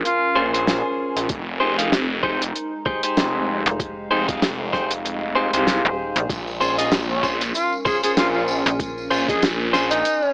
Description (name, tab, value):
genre	glitch hop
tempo	96 BPM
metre	4/4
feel	swing 57% on 16ths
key	Bb dorian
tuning	A4 = 439 Hz
part	mellow tenor saxophone	melody	0.0-0.5, 7.1-10.3 s	Db4 to Ab4	-22 LUFS	equal	none
part	phased detuned saw bass	bass	0.0-10.0 s	F1 to C2	-24 LUFS	equal	phaser
part	warbly tape-like pad	texture	0.0-10.3 s	Ab3 to C6	-29 LUFS	equal	chorus, built-in reverb, phaser, sidechain pumping
part	damped 70s drum kit	drums	0.1-10.3 s	hi-hat, rim click, snare drum, tambourine	-24 LUFS	equal	none
part	clean electric guitar	stabs	0.4-9.9 s	Db4 to F5	-23 LUFS	equal	sidechain pumping, tape echo
part	electronic kick drum	drums	1.3-9.4 s	none	-30 LUFS	equal	none
part	slap-like FM bass	bass	3.7-9.1 s	Eb1 to Bb1	-22 LUFS	equal	none
room	light reverb, studio reverb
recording	dry, gritty hardware recording, AM radio sound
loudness	-18 LUFS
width	side -26 dB against mid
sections	0.0-10.3 A section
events	none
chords	0.0 Bbm9; 1.3 Fm7; 6.3 Bbm9